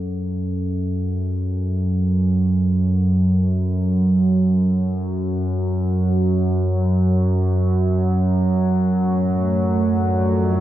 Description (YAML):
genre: dark ambient drone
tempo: free time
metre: none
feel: none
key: F# harmonic minor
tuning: A4 = 440 Hz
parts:
  - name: analog drone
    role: drone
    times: 0.0-10.6 s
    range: F#2 to F#3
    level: -17 LUFS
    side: right 1 dB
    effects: chorus
  - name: bronze singing bowl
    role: texture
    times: 0.0-10.6 s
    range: A4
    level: -41 LUFS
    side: left 7 dB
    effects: none
  - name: sweeping resonant pad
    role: sustained chords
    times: 9.0-10.6 s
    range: A3 to D5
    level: -23 LUFS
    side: right 2 dB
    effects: chorus
room: wet cathedral reverb, RT60 6.9 s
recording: dark, warm production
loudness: -17 LUFS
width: side -13 dB against mid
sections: 0.0-10.6 A section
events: none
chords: 0.0 F#m; 9.0 Dm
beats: free time